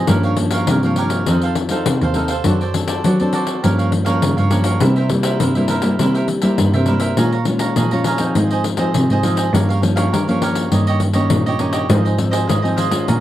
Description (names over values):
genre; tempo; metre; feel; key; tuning
samba and choro; 102 BPM; 4/4; straight; F minor; A4 = 440 Hz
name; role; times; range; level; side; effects
cavaquinho; accompaniment; 0.0-13.2 s; Eb4 to Bb5; -23 LUFS; right 5 dB; none
nylon-string guitar; accompaniment; 0.0-13.2 s; G2 to A4; -19 LUFS; left 1 dB; none
warm cello; bass; 0.0-13.2 s; Eb2 to G3; -19 LUFS; right 1 dB; none
pandeiro; percussion; 0.1-13.2 s; none; -22 LUFS; left 6 dB; none
room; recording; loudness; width
little or no reverb; dry, close 1970s-style studio recording; -14 LUFS; side -13 dB against mid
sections
0.0-13.2 A section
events
none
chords
0.1 Gm7b5; 1.3 F7; 2.5 D7/F#; 3.6 Gm7b5; 4.8 C7; 7.2 Bbm7; 8.4 Fm7/Ab; 9.5 Gm7b5; 10.7 Eb7/G; 11.9 Ab6